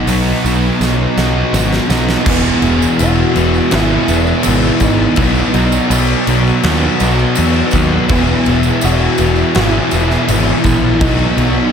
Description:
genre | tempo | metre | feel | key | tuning
rock, shoegaze and dream pop | 82 BPM | 4/4 | straight | E major | A4 = 440 Hz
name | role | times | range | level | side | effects
soft struck synth lead | melody | 0.0-11.7 s | B3 to F#4 | -20 LUFS | equal | chorus, tape echo
picked twelve-string acoustic guitar | arpeggios | 0.0-11.7 s | E3 to E4 | -24 LUFS | left 5 dB | wide subtle chorus, tape echo
overdriven electric guitar | riff | 0.0-11.7 s | E2 to G#4 | -18 LUFS | right 11 dB | reverse reverb
thick fuzz guitar | riff | 0.0-11.7 s | E2 to B3 | -17 LUFS | left 7 dB | distortion, lush chorus
fuzz picked electric bass | bass | 0.1-11.6 s | E1 to E2 | -16 LUFS | equal | overdrive
huge arena drum kit | drums | 0.1-11.5 s | crash cymbal, hi-hat, kick drum, snare drum | -19 LUFS | equal | none
tambourine | percussion | 0.1-11.5 s | none | -30 LUFS | right 16 dB | none
room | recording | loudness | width
moderate plate reverb, RT60 2.5 s | dreamy mix soaked in reverb | -11 LUFS | side -7 dB against mid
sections
0.0-2.3 A section; 2.3-11.7 B section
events
drum fill 0.8-2.3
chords
0.0 B; 2.3 E; 5.2 B; 8.1 E; 11.0 B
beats
0.06 0.79 1.53 | 2.26 2.99 3.72 4.45 | 5.18 5.91 6.64 7.37 | 8.10 8.82 9.55 10.28 | 11.01

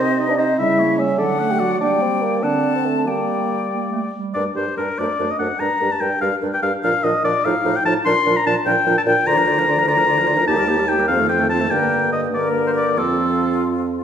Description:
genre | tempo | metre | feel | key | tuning
quick classical-period movement for wind quintet | 98 BPM (dotted quarters) | 6/8 | rubato | G minor, Bb major from 9.3 s | A4 = 440 Hz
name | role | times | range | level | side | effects
bright silver concert flute | melody | 0.0-14.0 s | F4 to A5 | -25 LUFS | left 6 dB | none
clear oboe | second line | 0.0-13.6 s | A4 to C6 | -20 LUFS | left 3 dB | none
warm French horn | accompaniment | 0.0-14.0 s | C3 to Bb3 | -26 LUFS | equal | none
warm clarinet | accompaniment | 0.0-14.0 s | F#3 to G4 | -24 LUFS | right 4 dB | none
warm bassoon | bass | 0.0-14.0 s | D2 to C5 | -23 LUFS | right 2 dB | none
room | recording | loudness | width
wet recital hall reverb, RT60 1.5 s | recorded in a church or concert hall | -16 LUFS | side -8 dB against mid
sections
0.0-4.4 A section; 4.4-14.0 A section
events
none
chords
0.0 Cm; 0.6 C#dim7; 1.2 D; 1.8 Gm; 2.4 D7; 3.1 Gm; 5.0 D/F#; 5.6 Gm; 6.8 Bb; 7.4 F7/A; 8.1 Bb; 9.3 Bb/D; 10.5 Eb; 11.1 F7; 11.7 Gm; 13.0 F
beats
| 0.59 1.19 | 1.81 2.42 | 3.06 3.71 | 4.35 4.99 | 5.60 6.22 | 6.83 7.45 | 8.06 8.67 | 9.27 9.88 | 10.48 11.09 | 11.71 12.33 | 12.98 13.62

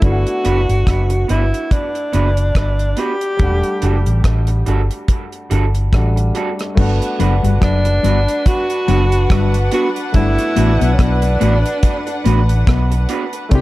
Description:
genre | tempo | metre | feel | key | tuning
lovers rock reggae | 71 BPM | 4/4 | swing 56% on 16ths | G major | A4 = 439 Hz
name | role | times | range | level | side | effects
breathy tenor saxophone | melody | 0.0-12.7 s | C#4 to G4 | -20 LUFS | equal | tape echo
warm grand piano | accompaniment | 0.0-13.6 s | G3 to F#5 | -26 LUFS | left 1 dB | dub echo
vintage muted fingered electric bass | bass | 0.0-13.6 s | E1 to C2 | -15 LUFS | equal | none
deep reggae drum kit | drums | 0.0-13.6 s | crash cymbal, hi-hat, kick drum, rim click | -17 LUFS | equal | none
electric guitar through a small old amp | stabs | 0.4-13.2 s | G3 to B4 | -25 LUFS | right 4 dB | dub echo
warm studio string section | second line | 6.8-13.6 s | D4 to C6 | -25 LUFS | equal | dub echo
mellow electric guitar | riff | 6.8-13.6 s | F#3 to C4 | -23 LUFS | left 7 dB | dub echo
room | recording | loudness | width
light reverb, small room ambience | dark, warm production | -13 LUFS | side -17 dB against mid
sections
0.0-6.8 A section; 6.8-13.6 B section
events
none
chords
0.0 Gmaj7; 3.4 Em11 (rootless); 6.8 Gmaj7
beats
| 0.02 0.86 1.71 2.55 | 3.40 4.24 5.08 5.93 | 6.77 7.62 8.46 9.30 | 10.14 10.99 11.83 12.68 | 13.52

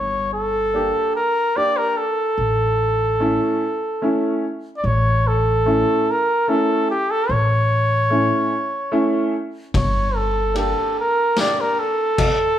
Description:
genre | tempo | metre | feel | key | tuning
klezmer | 73 BPM | 3/4 | straight | unclear | A4 = 441 Hz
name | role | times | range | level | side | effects
warm cornet | melody | 0.0-12.6 s | G4 to D5 | -19 LUFS | equal | none
upright bass | bass | 0.0-10.7 s | G1 to A1 | -22 LUFS | equal | none
warm upright piano | accompaniment | 0.7-11.8 s | A3 to G4 | -22 LUFS | equal | none
street-band drum kit | drums | 9.7-12.4 s | crash cymbal, kick drum, ride cymbal, snare drum | -24 LUFS | left 2 dB | none
room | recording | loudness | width
wet large studio reverb, RT60 1.1 s | band playing live in one room | -17 LUFS | side -10 dB against mid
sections
0.0-4.8 A section; 4.8-12.6 A section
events
none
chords
0.0 Gm; 2.4 A; 9.7 Gm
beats
0.73 1.56 | 2.38 3.20 4.02 | 4.84 5.66 6.48 | 7.29 8.11 8.93 | 9.74 10.56 11.37 | 12.18

